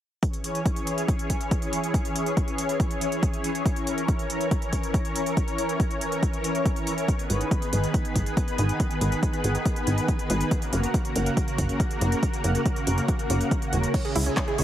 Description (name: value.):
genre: uplifting trance.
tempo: 140 BPM.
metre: 4/4.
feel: straight.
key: C# dorian.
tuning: A4 = 440 Hz.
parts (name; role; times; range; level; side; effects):
analog string pad; sustained chords; 0.2-14.6 s; C#3 to C#5; -27 LUFS; equal; ensemble chorus, sidechain pumping.
electronic kick drum; drums; 0.2-14.5 s; none; -25 LUFS; equal; overdrive.
techno drum kit; drums; 0.2-14.6 s; crash cymbal, handclaps, hi-hat; -34 LUFS; right 1 dB; none.
plucky analog bass; bass; 7.3-14.6 s; E1 to C#2; -24 LUFS; equal; sidechain pumping.
wide unison pluck; arpeggios; 13.9-14.6 s; C#4 to C#5; -29 LUFS; right 3 dB; sidechain pumping, tape echo.
room: light reverb, digital ambience.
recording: heavily compressed radio sound.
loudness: -23 LUFS.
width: side -11 dB against mid.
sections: 0.2-13.9 A section.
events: none.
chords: 0.2 C#m; 7.1 G#m; 10.5 F#; 13.9 C#m.